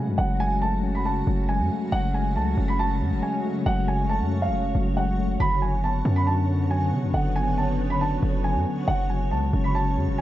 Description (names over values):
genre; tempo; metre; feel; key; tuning
hip hop; 138 BPM; 4/4; half-time; F# minor; A4 = 440 Hz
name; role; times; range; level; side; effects
dark concert grand piano; melody; 0.0-10.2 s; E#5 to B5; -28 LUFS; right 2 dB; low-pass filter
mellow tine electric piano; accompaniment; 0.0-10.2 s; C#3 to C#5; -28 LUFS; left 2 dB; medium stereo tremolo, low-pass filter
granular cloud pad; sustained chords; 0.0-10.2 s; C#3 to C#5; -32 LUFS; equal; built-in reverb
hard-hitting 808-style bass; bass; 0.0-10.2 s; F#1 to C#3; -25 LUFS; equal; none
room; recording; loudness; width
digital ambience; nothing above 7.9 kHz; -22 LUFS; side -14 dB against mid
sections
0.0-10.2 A section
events
none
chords
0.0 F#madd9; 5.4 Bmadd9/F#; 8.9 C#sus4/F#